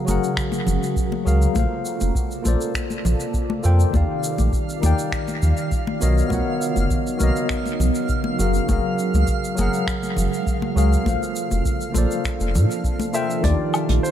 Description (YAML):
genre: sunset chillout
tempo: 101 BPM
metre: 4/4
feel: straight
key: unclear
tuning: A4 = 439 Hz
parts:
  - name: bright tine electric piano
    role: accompaniment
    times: 0.0-14.1 s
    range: Eb3 to G5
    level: -25 LUFS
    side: moving between left 4 dB and right 4 dB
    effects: medium stereo tremolo, auto-pan, analog delay
  - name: shimmering ambient pad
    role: sustained chords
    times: 0.0-14.1 s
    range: C3 to D5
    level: -28 LUFS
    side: right 1 dB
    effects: chorus, built-in reverb, phaser
  - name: warm sub bass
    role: bass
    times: 0.1-14.0 s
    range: F1 to Bb2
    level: -19 LUFS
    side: equal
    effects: none
  - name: vintage brush drum kit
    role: drums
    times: 0.1-14.1 s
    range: finger snaps, hi-hat, shaker, woodblock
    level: -31 LUFS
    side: equal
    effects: dub echo
  - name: congas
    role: percussion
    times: 0.1-14.0 s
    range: none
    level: -28 LUFS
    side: left 4 dB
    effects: none
  - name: electronic kick drum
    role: drums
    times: 0.4-13.6 s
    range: none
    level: -25 LUFS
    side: equal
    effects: none
  - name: twinkling granular texture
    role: texture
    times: 4.2-13.5 s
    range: F5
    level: -32 LUFS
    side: right 3 dB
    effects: built-in reverb
  - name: warm grand piano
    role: melody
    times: 13.1-14.1 s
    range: C5 to Fb5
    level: -26 LUFS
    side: left 1 dB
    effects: tape echo
room: small room reverb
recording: echo-heavy mix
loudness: -19 LUFS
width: side -10 dB against mid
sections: 0.0-13.4 A section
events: none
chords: 0.0 Gbmaj9; 1.6 Bbmaj9; 3.9 Ebmaj9; 6.0 Bmaj9; 8.4 Gbmaj9; 11.1 Bbmaj9; 13.4 Ebmaj9